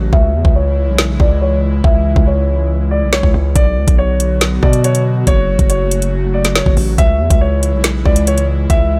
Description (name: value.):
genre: hip hop, drill.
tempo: 140 BPM.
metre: 4/4.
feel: half-time.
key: C# phrygian.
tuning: A4 = 442 Hz.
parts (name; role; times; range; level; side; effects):
airy breathy pad; sustained chords; 0.0-9.0 s; C#3 to F#4; -24 LUFS; equal; chorus.
distorted 808-style bass; bass; 0.0-9.0 s; F#1 to B2; -18 LUFS; equal; distortion.
warm concert grand piano; melody; 0.1-9.0 s; C#5 to E5; -21 LUFS; equal; low-pass filter, tape echo.
drill drum kit; drums; 0.1-8.8 s; hi-hat, kick drum, snare drum; -16 LUFS; equal; none.
room: little or no reverb.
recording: none.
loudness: -13 LUFS.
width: mono.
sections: 0.0-9.0 A section.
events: break 0.0-3.6; filter sweep on grand piano 0.0-3.6.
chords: 0.1 C#m; 3.6 Bm; 5.3 F#m; 7.0 C#m.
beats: | 0.13 0.56 0.98 1.41 | 1.84 2.27 2.70 3.13 | 3.56 3.98 4.41 4.84 | 5.27 5.70 6.13 6.56 | 6.98 7.41 7.84 8.27 | 8.70.